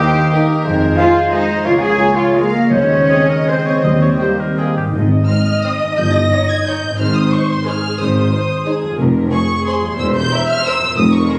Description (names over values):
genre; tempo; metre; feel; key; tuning
classical, orchestral ballroom waltz; 150-193 BPM; 3/4; rubato; Ab major; A4 = 440 Hz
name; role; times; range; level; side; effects
warm symphonic violin section; melody; 0.0-11.4 s; G5 to Bb6; -24 LUFS; equal; none
mellow silver concert flute; second line; 0.0-4.7 s; Ab4 to Ab5; -25 LUFS; equal; none
warm clarinet; second line; 0.0-4.8 s; Ab4 to Ab5; -23 LUFS; equal; none
warm cor anglais; second line; 0.0-4.8 s; G4 to Eb5; -25 LUFS; equal; none
warm studio violin section; second line; 0.0-11.4 s; C4 to F5; -29 LUFS; equal; none
dark symphonic viola section; accompaniment; 0.0-11.4 s; Ab4 to E5; -24 LUFS; equal; none
warm bassoon; accompaniment; 0.0-4.8 s; G3 to Bb3; -27 LUFS; equal; none
dark French horn section; sustained chords; 0.0-4.7 s; Ab3 to Ab4; -25 LUFS; equal; none
concert harp; arpeggios; 0.0-11.4 s; E2 to Eb5; -24 LUFS; equal; none
warm symphonic cello section; bass; 0.0-11.2 s; E2 to Ab4; -22 LUFS; equal; none
warm chamber double bass section; bass; 0.7-11.2 s; E1 to F2; -22 LUFS; equal; none
timpani; percussion; 2.7-5.4 s; Ab2 to Eb3; -23 LUFS; equal; none
mellow tuba; bass; 4.9-11.2 s; E1 to Ab1; -23 LUFS; equal; none
room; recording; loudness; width
moderate scoring stage reverb, RT60 1.8 s; recorded on a phone in the room, club reverb; -15 LUFS; mono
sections
0.0-4.9 A section; 4.9-11.4 B section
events
none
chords
0.0 Eb; 0.7 Fm; 1.6 Bbm7/Db; 2.7 Ab/Eb; 3.8 Eb; 4.9 Ab; 6.0 Eb7/G; 7.0 Ab; 9.0 Fm; 10.0 C7/E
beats
0.33 | 0.65 0.98 1.32 | 1.65 1.98 2.35 | 2.71 3.09 3.48 | 3.84 4.21 4.59 | 4.94 5.28 5.64 | 5.97 6.31 6.66 | 6.99 7.32 7.67 | 8.00 8.33 8.67 | 9.00 9.33 9.67 | 9.99 10.32 10.65 | 10.97 11.29